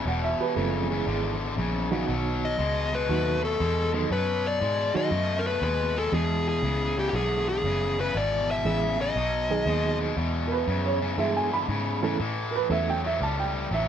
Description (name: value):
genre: blues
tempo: 119 BPM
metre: 4/4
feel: swing 67% on 8ths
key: E major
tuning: A4 = 440 Hz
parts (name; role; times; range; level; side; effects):
- warm upright piano; second line; 0.0-0.7, 10.5-13.9 s; G4 to B5; -28 LUFS; right 6 dB; none
- overdriven electric guitar; riff; 0.0-13.9 s; E2 to A3; -30 LUFS; left 3 dB; spring reverb
- vintage muted fingered electric bass; bass; 0.0-13.9 s; E1 to A2; -30 LUFS; equal; none
- barky reed electric piano; accompaniment; 0.6-13.0 s; D#3 to A4; -30 LUFS; right 6 dB; overdrive, fast tremolo
- dark smooth lead guitar; melody; 2.4-10.0 s; G4 to E5; -27 LUFS; left 2 dB; overdrive
room: light reverb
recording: lossy compression artefacts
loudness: -24 LUFS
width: side -9 dB against mid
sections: 0.0-10.2 A section; 10.2-13.9 B section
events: upright piano solo 10.2-13.9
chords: 0.0 E; 2.1 B; 6.1 E; 9.2 B; 10.2 E; 12.2 A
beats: | 0.05 0.56 1.07 1.57 | 2.08 2.58 3.09 3.60 | 4.10 4.61 5.12 5.62 | 6.13 6.63 7.14 7.64 | 8.15 8.66 9.16 9.67 | 10.17 10.68 11.18 11.69 | 12.20 12.70 13.21 13.71